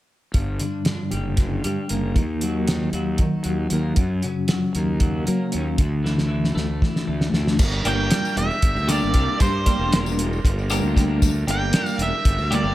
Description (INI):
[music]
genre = psychedelic rock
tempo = 232 BPM (eighths)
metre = 7/8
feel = straight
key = G harmonic minor, G dorian from 7.6 s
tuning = A4 = 440 Hz
[part]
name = twelve-string electric guitar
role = riff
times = 0.3-12.7 s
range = F#2 to G4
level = -25 LUFS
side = left 1 dB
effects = harmonic tremolo
[part]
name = fuzz fingered electric bass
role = bass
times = 0.3-12.7 s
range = E1 to F#3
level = -24 LUFS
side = equal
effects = overdrive
[part]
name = cloth-damped thuddy drum kit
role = drums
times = 0.3-12.6 s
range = crash cymbal, hi-hat, kick drum, snare drum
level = -22 LUFS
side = equal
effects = none
[part]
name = combo organ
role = sustained chords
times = 7.6-12.7 s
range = G3 to Bb4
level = -32 LUFS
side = right 5 dB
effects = wide subtle chorus
[part]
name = tambourine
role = percussion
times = 7.6-12.4 s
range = none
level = -38 LUFS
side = left 8 dB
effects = none
[part]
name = octave-fuzz lead guitar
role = melody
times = 7.9-12.7 s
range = C5 to G5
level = -25 LUFS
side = right 2 dB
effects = distortion, analog delay
[sound]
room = studio ambience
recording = none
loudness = -19 LUFS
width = side -15 dB against mid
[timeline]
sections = 0.3-7.6 A section; 7.6-12.7 B section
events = drum fill 6.0-7.6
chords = 0.3 Gm; 2.2 Ebm; 4.0 F#; 5.8 Dsus2; 7.6 Gm